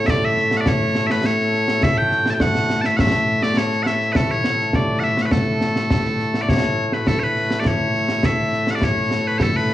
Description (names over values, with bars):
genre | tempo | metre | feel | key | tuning
scottish traditional, Scottish pipe music | 103 BPM | 4/4 | straight | A major | A4 = 440 Hz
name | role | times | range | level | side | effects
loud bright bagpipes | melody | 0.0-9.7 s | A2 to A5 | -19 LUFS | equal | cassette tape
concert snare drum and concert bass drum | drums | 0.1-9.7 s | none | -21 LUFS | equal | cassette tape
room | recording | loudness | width
light reverb, small room reverb | home recording on cassette, small room ambience | -17 LUFS | side -13 dB against mid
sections
0.0-6.5 A section; 6.5-9.7 B section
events
none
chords
none